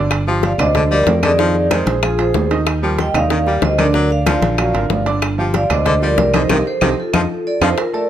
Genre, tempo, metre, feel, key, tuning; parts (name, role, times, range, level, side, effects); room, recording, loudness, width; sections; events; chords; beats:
latin, salsa; 188 BPM; 4/4; straight; A4 = 439 Hz
bright baby grand piano; accompaniment; 0.0-8.1 s; D3 to A5; -21 LUFS; right 4 dB
fingered electric bass; bass; 0.0-7.7 s; G1 to F2; -19 LUFS; equal
bongos; percussion; 0.1-7.9 s; -24 LUFS; left 10 dB
claves; percussion; 0.1-7.7 s; -25 LUFS; left 4 dB
congas; percussion; 0.1-8.1 s; -24 LUFS; left 3 dB
timbales; percussion; 0.1-7.9 s; -24 LUFS; right 6 dB
clear baritone saxophone; second line; 0.3-7.7 s; D3 to G3; -22 LUFS; left 5 dB
vibraphone with medium hard mallets; melody; 0.4-8.1 s; F4 to G5; -18 LUFS; right 1 dB
light reverb; close, detailed microphones; -13 LUFS; side -10 dB against mid
0.0-7.8 A section
band accent 6.5-7.8; drum fill 7.1-7.8
0.1 Gm7; 1.4 Fm7; 2.0 Bbsus2; 2.7 Eb; 3.9 Daug; 5.2 Gm7; 6.5 Cm; 7.1 F7
| 0.11 0.43 0.75 1.07 | 1.39 1.71 2.03 2.35 | 2.67 2.99 3.31 3.63 | 3.94 4.26 4.58 4.90 | 5.22 5.54 5.86 6.18 | 6.50 6.82 7.14 7.46 | 7.77 8.09